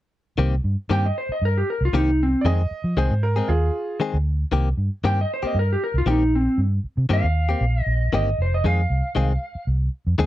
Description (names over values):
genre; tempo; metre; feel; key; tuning
blues; 116 BPM; 4/4; straight; C minor; A4 = 441 Hz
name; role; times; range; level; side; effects
direct-recorded clean electric guitar; stabs; 0.4-10.3 s; Eb3 to Ab4; -24 LUFS; left 5 dB; none
vintage muted fingered electric bass; bass; 0.4-10.3 s; F1 to F3; -20 LUFS; equal; none
electric slide guitar; melody; 0.9-9.7 s; C4 to G5; -24 LUFS; equal; slapback echo
clear upright piano; second line; 2.4-4.0 s; F4 to Eb5; -27 LUFS; right 3 dB; none
room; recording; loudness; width
little or no reverb; dry, close 1970s-style studio recording; -19 LUFS; side -14 dB against mid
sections
0.4-10.3 A section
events
none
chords
0.4 Cm7; 2.4 Fm7; 4.5 Cm7; 8.6 Fm7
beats
| 0.38 0.90 1.41 1.93 | 2.45 2.96 3.48 4.00 | 4.51 5.03 5.55 6.06 | 6.58 7.09 7.61 8.12 | 8.64 9.16 9.67 10.19